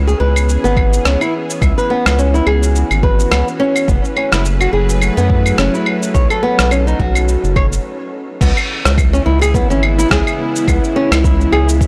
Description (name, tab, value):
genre	organic downtempo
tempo	106 BPM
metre	4/4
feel	swing 56% on 16ths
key	C# minor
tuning	A4 = 438 Hz
part	bowed-like drone	sustained chords	0.0-11.9 s	C#3 to B4	-24 LUFS	equal	built-in reverb, sidechain pumping
part	round analog bass	bass	0.0-11.9 s	F#1 to F#2	-17 LUFS	equal	none
part	flamenco guitar	arpeggios	0.1-11.7 s	B3 to E5	-20 LUFS	equal	tape echo
part	dusty soul sampler-style drum kit	drums	0.1-11.9 s	claves, crash cymbal, rim click, shaker	-21 LUFS	equal	studio reverb, soft clipping on snare
part	electronic kick drum	drums	0.8-11.9 s	none	-18 LUFS	equal	studio reverb
room	light reverb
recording	blown-out, overdriven recording, overdrive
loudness	-14 LUFS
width	mono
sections	0.0-8.4 A section; 8.4-11.9 B section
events	stop 7.8-8.4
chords	0.0 C#m7; 3.9 F#m11; 6.1 B9; 8.4 C#m7